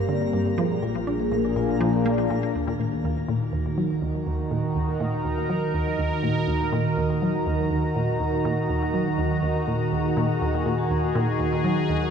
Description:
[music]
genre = ambient, sequencer-driven space music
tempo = 122 BPM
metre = 4/4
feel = straight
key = Eb minor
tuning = A4 = 439 Hz
[part]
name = sweeping resonant pad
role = sustained chords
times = 0.0-12.1 s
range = Bb2 to Bb5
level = -24 LUFS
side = equal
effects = chorus, shimmer reverb
[part]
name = resonant blip pluck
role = riff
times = 0.0-12.0 s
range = Eb2 to D4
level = -26 LUFS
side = equal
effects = chorus, vintage 12-bit sampler grit, ping-pong delay, shimmer reverb
[part]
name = analog drone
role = bass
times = 0.0-2.5 s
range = G1 to Bb1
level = -34 LUFS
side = equal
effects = chorus
[part]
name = twinkling granular texture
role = texture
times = 0.0-2.6 s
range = Bb5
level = -44 LUFS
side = left 1 dB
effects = built-in reverb, shimmer reverb
[part]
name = vibraphone with soft mallets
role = arpeggios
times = 0.1-2.5, 10.4-12.1 s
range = Eb4 to Bb5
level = -32 LUFS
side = right 2 dB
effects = auto-pan, ping-pong delay, shimmer reverb
[sound]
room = wet scoring stage reverb, RT60 2.2 s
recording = dark, warm production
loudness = -22 LUFS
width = side -7 dB against mid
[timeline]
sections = 0.0-2.5 A section; 2.5-12.1 B section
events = filter sweep on synth arpeggio sound 0.0-2.5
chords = 0.0 Gm; 0.6 Bb7; 2.5 Ebm

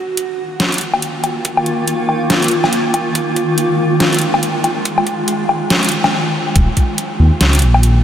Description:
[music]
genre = deep dubstep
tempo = 141 BPM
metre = 4/4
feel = swing 58% on 16ths, half-time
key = unclear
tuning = A4 = 442 Hz
[part]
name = granular cloud pad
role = sustained chords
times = 0.0-8.0 s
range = Eb3 to F4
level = -18 LUFS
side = equal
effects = built-in reverb
[part]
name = dubstep drum kit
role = drums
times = 0.2-7.9 s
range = hi-hat, snare drum, woodblock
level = -17 LUFS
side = left 1 dB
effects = none
[part]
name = electronic kick drum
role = drums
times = 1.4-6.9 s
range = none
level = -16 LUFS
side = equal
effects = high-pass filter on kick, high-pass filter on room
[part]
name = dark detuned saw bass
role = bass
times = 6.6-8.0 s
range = Eb1 to Eb2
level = -10 LUFS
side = equal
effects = none
[sound]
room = wet huge ambient reverb, RT60 8.7 s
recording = dreamy mix soaked in reverb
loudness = -13 LUFS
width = side -10 dB against mid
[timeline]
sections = 0.0-6.6 A section; 6.6-8.0 B section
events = build-up 0.0-6.6; stop 6.1-6.6; drop 6.6-8.0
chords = 0.0 Eb5

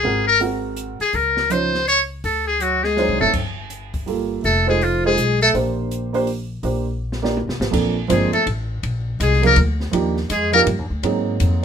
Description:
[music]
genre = jazz, small-group swing and bop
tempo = 164 BPM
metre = 3/4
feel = swing 64% on 8ths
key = unclear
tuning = A4 = 440 Hz
[part]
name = trumpet with metal mute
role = melody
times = 0.0-5.5, 8.1-10.6 s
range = F4 to Db5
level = -18 LUFS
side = left 2 dB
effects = none
[part]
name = warm upright piano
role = accompaniment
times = 0.0-11.6 s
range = F3 to D5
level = -22 LUFS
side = right 4 dB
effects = none
[part]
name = upright bass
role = bass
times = 0.0-11.6 s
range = F1 to Ab2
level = -23 LUFS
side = left 1 dB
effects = none
[part]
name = open jazz drum kit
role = drums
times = 0.4-11.5 s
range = crash cymbal, hi-hat, kick drum, ride cymbal, snare drum, toms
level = -29 LUFS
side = left 1 dB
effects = none
[part]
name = breathy tenor saxophone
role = second line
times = 2.6-5.5, 8.1-10.7 s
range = F3 to Bb3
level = -22 LUFS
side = right 2 dB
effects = none
[sound]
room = moderate studio reverb, RT60 0.5 s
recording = minimal, uncompressed stereo recording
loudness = -17 LUFS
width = side -7 dB against mid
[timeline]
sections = 0.0-7.7 A section; 7.7-11.6 B section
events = drum fill 3.0-3.3, 7.0-7.7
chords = 0.0 Ab9; 1.1 Dbmaj9; 2.2 D7b9; 3.3 Gm9; 4.4 F7; 5.5 Bb69; 7.7 Bbmaj9; 8.8 Bb7; 9.9 Ebmaj9; 11.0 Ab9

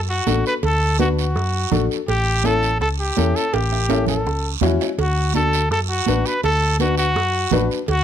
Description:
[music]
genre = latin, cumbia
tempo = 165 BPM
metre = 4/4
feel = straight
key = D major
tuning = A4 = 443 Hz
[part]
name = hollow-body short-scale fingered electric bass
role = bass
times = 0.0-8.0 s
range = A1 to F#2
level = -21 LUFS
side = equal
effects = none
[part]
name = breathy trumpet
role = melody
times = 0.1-8.0 s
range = F#4 to B4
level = -22 LUFS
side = equal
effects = none
[part]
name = dark upright piano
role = accompaniment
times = 0.3-7.8 s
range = C#4 to B4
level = -23 LUFS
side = left 7 dB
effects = none
[part]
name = congas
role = percussion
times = 0.3-8.0 s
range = none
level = -26 LUFS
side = right 10 dB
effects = none
[part]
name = cowbell and timbales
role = percussion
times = 0.3-8.0 s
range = none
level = -27 LUFS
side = right 10 dB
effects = none
[part]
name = guiro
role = percussion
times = 0.3-8.0 s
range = none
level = -30 LUFS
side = right 11 dB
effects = none
[sound]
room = little or no reverb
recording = close, detailed microphones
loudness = -17 LUFS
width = side -9 dB against mid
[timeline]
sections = 0.0-8.0 A section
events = drum fill 3.5-5.0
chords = 0.0 D; 2.1 A7; 5.0 D

